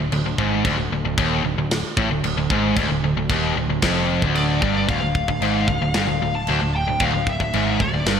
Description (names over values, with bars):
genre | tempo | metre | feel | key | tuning
heavy metal | 113 BPM | 4/4 | straight | D minor | A4 = 441 Hz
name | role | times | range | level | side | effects
sludgy distorted guitar | riff | 0.0-8.2 s | D2 to A2 | -24 LUFS | right 8 dB | overdrive
tight distorted guitar | riff | 0.0-8.2 s | D2 to A2 | -23 LUFS | left 8 dB | distortion
picked electric bass | bass | 0.0-8.2 s | D1 to A1 | -26 LUFS | equal | none
tight metal drum kit | drums | 0.1-8.2 s | china cymbal, kick drum, snare drum | -26 LUFS | equal | gated reverb
high-gain lead guitar | melody | 4.4-8.2 s | D5 to A5 | -24 LUFS | left 2 dB | distortion
room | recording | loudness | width
moderate lush hall reverb, RT60 1.8 s, small room ambience | bright 1980s-style digital production | -18 LUFS | side -7 dB against mid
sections
0.0-4.9 A section; 4.9-8.2 B section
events
none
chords
0.0 Dm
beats
0.12 | 0.65 1.18 1.71 2.24 | 2.77 3.30 3.83 4.36 | 4.89 5.42 5.95 6.48 | 7.01 7.54 8.07